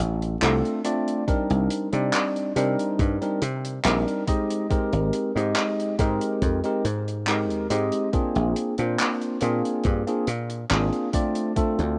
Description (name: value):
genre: vaporwave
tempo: 70 BPM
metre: 4/4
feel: straight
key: Ab lydian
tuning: A4 = 442 Hz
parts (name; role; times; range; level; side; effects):
- dry thumbed slap bass; bass; 0.0-12.0 s; Ab1 to C3; -28 LUFS; equal; none
- damped 70s drum kit; drums; 0.2-11.9 s; handclaps, hi-hat; -31 LUFS; equal; vintage 12-bit sampler grit, small room ambience
- bright tine electric piano; accompaniment; 0.4-12.0 s; G3 to Eb5; -27 LUFS; equal; subtle chorus, analog delay
- electronic kick drum; drums; 1.3-11.7 s; none; -28 LUFS; equal; vintage 12-bit sampler grit, small room ambience
room: small room ambience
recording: rough home demo mix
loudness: -24 LUFS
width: mono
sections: 0.0-12.0 A section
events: none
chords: 0.0 Dm7; 1.3 Cm7; 4.3 Abmaj7; 8.1 Bb7; 11.1 Dm7